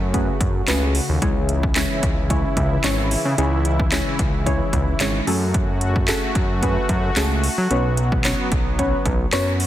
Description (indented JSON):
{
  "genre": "dance-pop",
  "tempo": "111 BPM",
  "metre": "4/4",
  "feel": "straight",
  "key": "C# minor",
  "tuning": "A4 = 439 Hz",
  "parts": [
    { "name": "warm analog pad", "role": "sustained chords", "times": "0.0-9.7 s", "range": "C#3 to F#4", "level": "-26 LUFS", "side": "left 1 dB", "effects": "chorus, sidechain pumping" },
    { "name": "fat analog bass", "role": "bass", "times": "0.0-9.7 s", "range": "G#1 to F#3", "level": "-22 LUFS", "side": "equal", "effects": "sidechain pumping" },
    { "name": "deep mellow chord stab", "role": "accompaniment", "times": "0.1-9.6 s", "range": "G#3 to C#5", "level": "-25 LUFS", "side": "equal", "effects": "chorus, sidechain pumping" },
    { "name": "house drum kit", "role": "drums", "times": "0.1-9.7 s", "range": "handclaps, hi-hat, kick drum, snare drum", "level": "-22 LUFS", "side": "equal", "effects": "overdrive" },
    { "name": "tambourine", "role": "percussion", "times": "0.7-9.5 s", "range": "none", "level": "-33 LUFS", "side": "right 7 dB", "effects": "none" }
  ],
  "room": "light reverb, digital ambience",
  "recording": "dense, heavily limited modern master",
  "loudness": "-18 LUFS",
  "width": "side -13 dB against mid",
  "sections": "0.0-9.7 A section",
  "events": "none",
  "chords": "0.0 F#madd9; 1.2 C#m; 5.3 F#madd9; 7.7 Bsus2",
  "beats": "0.14 0.68 | 1.22 1.76 2.30 2.84 | 3.38 3.92 4.46 5.00 | 5.54 6.08 6.62 7.17 | 7.71 8.25 8.79 9.33"
}